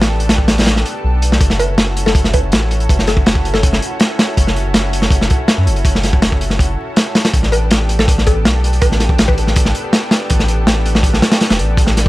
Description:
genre	drum and bass, jungle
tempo	162 BPM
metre	4/4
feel	straight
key	F# phrygian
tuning	A4 = 441 Hz
part	lush unison pad	sustained chords	0.0-12.1 s	B3 to A4	-22 LUFS	equal	chorus
part	soft dub sub bass	bass	0.0-12.1 s	E1 to F#2	-16 LUFS	equal	none
part	crunchy breakbeat drum kit	drums	0.0-12.1 s	hi-hat, kick drum, snare drum	-13 LUFS	equal	none
part	mallet-like synth pluck	melody	1.6-3.9, 7.5-9.8 s	A4 to B4	-22 LUFS	left 1 dB	chorus, dub echo
room	small room reverb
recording	vinyl crackle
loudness	-11 LUFS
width	side -18 dB against mid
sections	0.0-12.1 A section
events	kick drops out 0.7-1.4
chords	0.0 A9sus4; 1.4 F#m7; 7.3 A9sus4

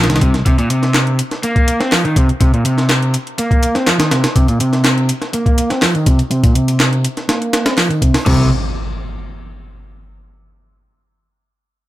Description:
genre	breakbeat, breaks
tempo	123 BPM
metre	4/4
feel	straight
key	C minor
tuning	A4 = 439 Hz
part	crunchy overdriven guitar	riff	0.0-8.5 s	Bb2 to C4	-15 LUFS	equal	low-pass filter, dub echo
part	picked electric bass	bass	0.0-0.4, 8.3-8.5 s	C2	-16 LUFS	equal	tube saturation
part	breakbeat sampler-style drum kit	drums	0.0-8.4 s	crash cymbal, hi-hat, kick drum, snare drum	-16 LUFS	equal	none
part	garage drum kit	drums	0.1-8.2 s	handclaps, hi-hat	-21 LUFS	equal	none
part	impact	sound effects	8.3-10.2 s	none	-24 LUFS	equal	none
room	little or no reverb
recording	none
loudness	-12 LUFS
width	side -15 dB against mid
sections	0.0-8.3 A section; 8.3-10.2 B section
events	filter sweep on overdriven electric guitar 0.0-8.3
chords	0.0 C7(no3); 8.3 N.C.

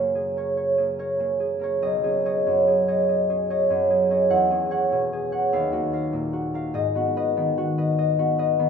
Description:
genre	classical, solo harp piece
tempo	48 BPM (dotted quarters)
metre	6/8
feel	rubato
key	unclear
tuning	A4 = 437 Hz
part	concert harp	solo	0.0-8.7 s	B1 to F#5	-20 LUFS	equal	none
room	wet recital hall reverb, RT60 1.7 s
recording	minimal, uncompressed stereo recording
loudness	-20 LUFS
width	side -6 dB against mid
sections	0.0-8.7 A section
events	none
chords	0.0 Gbadd9; 1.8 B69; 4.3 E69; 5.5 D#madd9; 6.8 G#m7

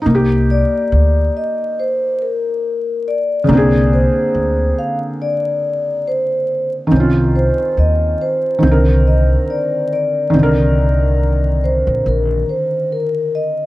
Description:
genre	hip hop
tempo	70 BPM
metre	4/4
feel	swing 56% on 16ths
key	C minor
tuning	A4 = 440 Hz
part	felt-muted upright piano	accompaniment	0.0-13.7 s	Db3 to Bb4	-18 LUFS	equal	none
part	upright bass	bass	0.1-12.4 s	Bb1 to Eb2	-14 LUFS	equal	none
part	vibraphone with soft mallets	melody	0.5-13.7 s	Bb4 to F5	-18 LUFS	left 1 dB	none
room	light reverb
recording	vinyl crackle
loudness	-13 LUFS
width	side -17 dB against mid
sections	0.0-10.3 A section; 10.3-13.7 B section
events	none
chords	0.1 Ebmaj7/C; 3.5 Bb9/C; 6.9 Dbmaj9/C; 8.6 Cm9

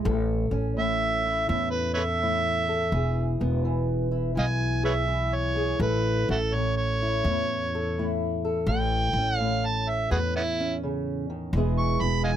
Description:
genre	acoustic country blues, solo or duo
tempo	84 BPM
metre	4/4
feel	swing 66% on 8ths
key	unclear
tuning	A4 = 442 Hz
part	fingerpicked acoustic archtop guitar	accompaniment	0.0-12.4 s	A2 to A4	-29 LUFS	left 1 dB	none
part	upright bass	bass	0.1-12.4 s	E1 to E2	-28 LUFS	equal	none
part	overdriven harmonica	melody	0.8-12.4 s	B3 to C#6	-27 LUFS	right 2 dB	none
room	little or no reverb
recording	close, detailed microphones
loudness	-24 LUFS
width	side -10 dB against mid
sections	0.0-12.4 A section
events	harmonica solo 0.0-12.4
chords	0.1 A; 2.9 E; 5.8 A; 11.6 E

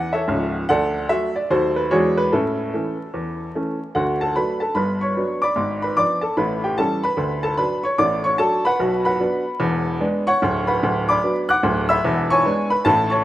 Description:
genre	jazz, stride piano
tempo	148 BPM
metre	4/4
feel	swing 64% on 8ths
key	A major, D major from 3.9 s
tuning	A4 = 440 Hz
part	bright upright piano	solo	0.0-13.2 s	C#1 to F#6	-18 LUFS	equal	none
room	moderate lush hall reverb, RT60 2.6 s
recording	rough home demo mix, vinyl crackle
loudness	-18 LUFS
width	side -14 dB against mid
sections	0.0-3.9 A section; 3.9-13.2 B section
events	none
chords	0.0 A; 0.7 D; 1.5 D#dim7; 1.9 E13; 2.3 A; 3.9 D; 4.8 Gmaj7; 5.6 G#dim7; 6.4 A9; 7.2 D; 8.8 Bm; 9.6 E7; 10.4 Bm/D; 12.0 E7

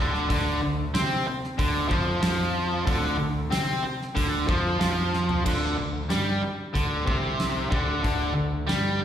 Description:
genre	hard rock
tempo	93 BPM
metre	4/4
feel	straight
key	unclear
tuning	A4 = 441 Hz
part	distorted electric guitar	riff	0.0-9.0 s	C3 to C4	-26 LUFS	equal	overdrive, slapback echo
part	fuzz fingered electric bass	bass	0.0-9.0 s	C2 to C3	-29 LUFS	equal	overdrive
part	gated 80s drum kit	drums	0.1-8.8 s	crash cymbal, hi-hat, kick drum, snare drum, toms	-29 LUFS	equal	none
room	light reverb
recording	live gig heard through the venue's PA, recital hall reverb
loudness	-23 LUFS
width	side -9 dB against mid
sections	0.0-5.5 A section; 5.5-9.0 B section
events	drum fill 5.1-5.5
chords	0.0 Dm; 5.5 Csus2

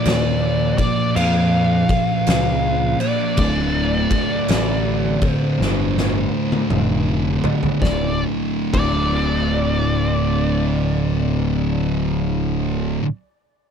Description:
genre	stoner and doom metal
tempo	54 BPM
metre	4/4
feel	swing 66% on 8ths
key	D minor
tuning	A4 = 437 Hz
part	fuzz lead guitar	melody	0.0-13.0 s	D5 to F5	-24 LUFS	equal	wah, distortion, tape echo
part	thick fuzz guitar	riff	0.0-13.0 s	D2 to Bb3	-23 LUFS	left 10 dB	distortion
part	thick fuzz guitar	riff	0.0-13.1 s	D2 to Bb3	-23 LUFS	right 11 dB	distortion
part	fuzz picked electric bass	bass	0.1-13.0 s	D1 to F2	-22 LUFS	left 1 dB	overdrive
part	oversized low-tuned drum kit	drums	0.1-9.0 s	crash cymbal, kick drum, snare drum, toms	-24 LUFS	equal	none
room	little or no reverb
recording	none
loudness	-17 LUFS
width	side -7 dB against mid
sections	0.0-7.8 A section; 7.8-12.3 B section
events	drum fill 5.6-7.8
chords	0.0 Bb; 3.4 Dm; 7.8 D5

